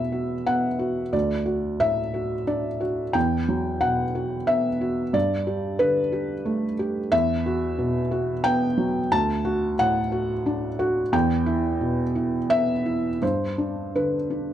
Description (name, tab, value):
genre	classical, contemporary piece for solo felt piano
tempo	90 BPM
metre	3/4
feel	rubato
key	E minor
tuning	A4 = 440 Hz
part	felt-muted upright piano	solo	0.0-14.5 s	D2 to A5	-22 LUFS	equal	none
room	light reverb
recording	dark, warm production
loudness	-22 LUFS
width	side -10 dB against mid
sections	0.0-14.5 A section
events	none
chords	0.0 Esus2; 1.1 D; 3.1 Emadd9; 5.1 Gadd9; 7.1 Emadd9; 9.1 D; 11.1 Em; 13.2 G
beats	0.47 | 1.14 1.80 2.48 | 3.15 3.82 4.48 | 5.14 5.80 6.46 | 7.12 7.79 8.45 | 9.12 9.79 10.46 | 11.13 11.81 12.50 | 13.21 13.94